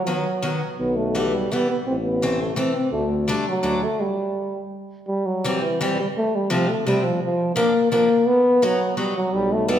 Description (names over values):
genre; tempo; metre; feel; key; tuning
alpine folk, alpine dance band; 169 BPM; 3/4; rubato; unclear; A4 = 440 Hz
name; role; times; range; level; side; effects
warm euphonium; melody; 0.0-9.8 s; E3 to C4; -21 LUFS; equal; none
picked acoustic archtop guitar; accompaniment; 0.1-9.8 s; C3 to E4; -25 LUFS; left 1 dB; none
warm tuba; bass; 0.8-3.9, 9.3-9.8 s; A1 to D2; -26 LUFS; left 1 dB; none
room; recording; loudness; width
wet recital hall reverb, RT60 1.7 s; recorded in a church or concert hall; -19 LUFS; side -10 dB against mid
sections
0.0-5.1 A section; 5.1-9.8 A section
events
stop 4.0-5.1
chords
0.0 B; 0.8 Em/B; 1.9 Am; 2.9 Dsus4; 3.6 D; 4.0 N.C.; 5.1 C; 6.2 F; 7.2 Bb; 8.3 B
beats
0.06 0.43 | 0.80 1.16 1.51 | 1.87 2.22 2.57 | 2.93 3.28 3.64 | 3.99 4.35 4.71 | 5.08 5.44 5.80 | 6.16 6.51 6.86 | 7.21 7.56 7.91 | 8.26 8.62 8.97 | 9.33 9.69